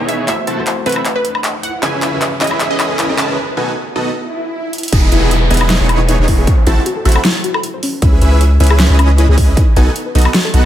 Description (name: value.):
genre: future bass.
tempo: 155 BPM.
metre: 4/4.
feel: half-time.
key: E major.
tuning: A4 = 441 Hz.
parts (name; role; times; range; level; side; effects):
felt-muted upright piano; accompaniment; 0.0-3.4 s; C#3 to D#5; -26 LUFS; left 4 dB; sidechain pumping, dub echo.
dense compressed supersaw; riff; 0.0-10.7 s; B3 to A5; -18 LUFS; right 1 dB; sidechain pumping, low-pass filter, dub echo.
riser, swell and downlifter; sound effects; 0.7-8.0 s; none; -24 LUFS; equal; none.
wide unison pluck; melody; 0.1-3.3 s; B4 to A5; -22 LUFS; right 1 dB; sidechain pumping, tape echo.
big-room dance drum kit; drums; 0.1-10.6 s; crash cymbal, handclaps, hi-hat, snare drum, woodblock; -18 LUFS; equal; high-pass filter on snare, high-pass filter on hats, high-pass filter on perc, high-pass filter on cymbals, high-pass filter on room.
soft round pluck; arpeggios; 4.9-10.5 s; C#4 to C5; -22 LUFS; left 4 dB; chorus, sidechain pumping, dub echo.
long sustained 808-style bass; bass; 4.9-10.7 s; E1 to C#2; -11 LUFS; equal; sidechain pumping.
electronic kick drum; drums; 4.9-9.7 s; none; -12 LUFS; equal; none.
room: light reverb, digital ambience.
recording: none.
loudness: -11 LUFS.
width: side -12 dB against mid.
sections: 0.0-4.9 A section; 4.9-10.7 B section.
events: build-up 0.0-4.9; drum fill 0.0-3.4, 4.7; riser 0.7-3.4; break 3.4-4.9; swell 4.2-4.9; drop 4.9-10.7.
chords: 0.3 Am6; 1.6 C#m7; 3.4 B7; 4.9 Emaj7; 6.5 Am6; 7.8 C#m7; 9.6 B7.